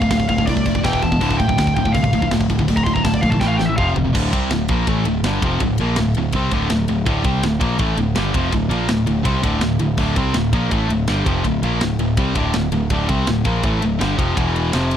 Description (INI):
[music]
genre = heavy metal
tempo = 164 BPM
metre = 4/4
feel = straight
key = D minor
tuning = A4 = 440 Hz
[part]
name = high-gain lead guitar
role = melody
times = 0.0-3.9 s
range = D5 to C6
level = -22 LUFS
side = equal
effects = distortion, slapback echo
[part]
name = high-gain distorted guitar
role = riff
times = 0.0-15.0 s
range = D2 to C4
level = -19 LUFS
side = equal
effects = distortion
[part]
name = growling picked electric bass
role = bass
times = 0.0-15.0 s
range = D1 to C2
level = -21 LUFS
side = equal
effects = overdrive
[part]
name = tight metal drum kit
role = drums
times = 0.0-15.0 s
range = crash cymbal, kick drum, ride cymbal, snare drum, toms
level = -23 LUFS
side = equal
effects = none
[sound]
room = little or no reverb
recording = dry, close 1970s-style studio recording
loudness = -16 LUFS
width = side -9 dB against mid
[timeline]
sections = 0.0-4.1 A section; 4.1-15.0 B section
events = lead electric guitar solo 0.0-4.1; drum fill 3.4-4.1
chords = 0.0 Dm; 0.8 E5; 1.2 Dm; 3.4 A5; 3.8 F5; 4.1 Dm; 14.4 E5